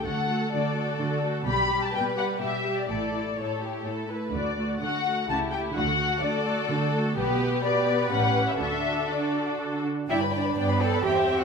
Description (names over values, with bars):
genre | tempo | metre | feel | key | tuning
quick classical-period movement for string orchestra | 127 BPM | 3/4 | straight | D major | A4 = 439 Hz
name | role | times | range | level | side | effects
muted studio violin section | melody | 0.0-11.4 s | B4 to B5 | -28 LUFS | left 5 dB | none
muted symphonic violin section | second line | 0.0-11.4 s | E4 to B5 | -31 LUFS | left 1 dB | none
muted symphonic viola section | accompaniment | 0.0-11.4 s | G3 to G4 | -31 LUFS | right 1 dB | none
muted symphonic cello section | bass | 0.1-11.4 s | A2 to A4 | -31 LUFS | right 3 dB | none
muted symphonic double bass section | bass | 0.1-11.4 s | A1 to G2 | -33 LUFS | right 4 dB | none
room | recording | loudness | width
wet scoring stage reverb, RT60 1.7 s | minimal, uncompressed stereo recording | -24 LUFS | side -5 dB against mid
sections
0.0-10.1 A section; 10.1-11.4 B section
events
none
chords
0.1 D; 1.5 G/B; 2.9 A; 4.3 D; 5.3 A7/C#; 5.8 D; 7.2 G/B; 8.1 A7; 8.6 D; 10.1 G